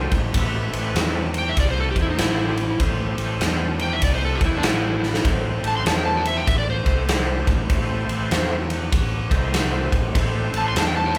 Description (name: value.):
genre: blues rock power trio and southern rock.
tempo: 98 BPM.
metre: 4/4.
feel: swing 63% on 8ths.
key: A minor.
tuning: A4 = 438 Hz.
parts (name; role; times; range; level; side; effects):
overdriven tonewheel organ; sustained chords; 0.0-11.0 s; C4 to C5; -32 LUFS; equal; slow rotary speaker, chorus vibrato.
fuzz fingered electric bass; bass; 0.0-11.2 s; A1 to E2; -28 LUFS; equal; overdrive.
huge arena drum kit; drums; 0.1-11.2 s; kick drum, ride cymbal, snare drum; -24 LUFS; equal; none.
overdriven slide guitar; melody; 1.4-11.1 s; D4 to C6; -26 LUFS; equal; none.
room: light reverb.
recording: band playing live in one room.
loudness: -22 LUFS.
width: mono.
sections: 0.0-11.2 A section.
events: electric slide guitar solo 0.0-11.2; drum fill 4.9-5.2.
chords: 0.0 Am.